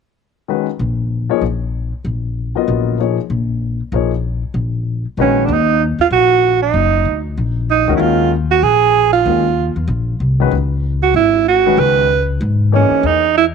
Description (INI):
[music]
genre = modal jazz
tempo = 191 BPM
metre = 4/4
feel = swing 60% on 8ths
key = Eb minor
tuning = A4 = 440 Hz
[part]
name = warm grand piano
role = accompaniment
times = 0.5-5.5, 7.9-13.2 s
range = Eb3 to Eb5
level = -18 LUFS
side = left 15 dB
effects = none
[part]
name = upright bass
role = bass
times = 0.8-13.5 s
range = Gb1 to Ab2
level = -18 LUFS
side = left 2 dB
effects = none
[part]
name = breathy alto saxophone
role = melody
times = 5.2-13.5 s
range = Db4 to Cb5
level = -12 LUFS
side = right 8 dB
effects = none
[sound]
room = light reverb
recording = 1960s-style stereo with parts hard left and right, lossy compression artefacts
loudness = -13 LUFS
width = side -6 dB against mid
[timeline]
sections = 0.5-5.5 A section; 5.5-13.5 B section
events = none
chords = 0.5 Ebm11; 10.5 Dbm11